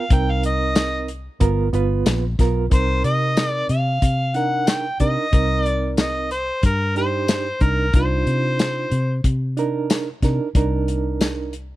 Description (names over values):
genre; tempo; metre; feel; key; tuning
straight-eighth soul blues; 92 BPM; 4/4; swing 54% on 16ths; C minor; A4 = 441 Hz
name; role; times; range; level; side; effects
mellow harmonica; melody; 0.0-9.2 s; Bb4 to G5; -23 LUFS; left 1 dB; overdrive
bright reed electric piano; accompaniment; 0.0-11.5 s; B3 to B4; -24 LUFS; right 6 dB; overdrive, fast tremolo
vintage muted fingered electric bass; bass; 0.1-11.7 s; G1 to C3; -22 LUFS; left 1 dB; none
warm soul drum kit; drums; 0.1-11.7 s; hi-hat, kick drum, snare drum, tambourine; -19 LUFS; left 1 dB; none
room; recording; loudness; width
small room ambience; dry, close 1970s-style studio recording; -18 LUFS; side -16 dB against mid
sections
0.0-2.7 A section; 2.7-11.8 B section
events
harmonica solo 0.0-2.7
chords
0.1 Cm7; 1.4 G7#9; 2.7 Cm9